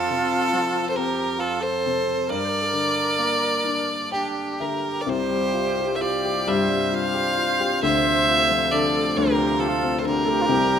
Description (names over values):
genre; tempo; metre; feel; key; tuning
celtic folk, Celtic slow air; 67 BPM; 3/4; rubato; unclear; A4 = 442 Hz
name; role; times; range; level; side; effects
bright fiddle; melody; 0.0-10.8 s; G4 to F5; -23 LUFS; right 1 dB; none
reedy wooden flute; second line; 0.0-10.8 s; D4 to C5; -27 LUFS; right 2 dB; none
warm upright piano; accompaniment; 0.0-10.8 s; C2 to G5; -25 LUFS; left 3 dB; none
hand-pumped harmonium; sustained chords; 5.1-10.8 s; D2 to F4; -30 LUFS; equal; none
room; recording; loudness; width
moderate scoring stage reverb, RT60 1.6 s; minimal, uncompressed stereo recording; -20 LUFS; side -8 dB against mid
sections
0.0-5.1 A section; 5.1-10.8 B section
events
upright piano fill 3.6-5.1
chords
0.0 F; 2.3 Gm; 5.1 Csus4; 7.8 Dm7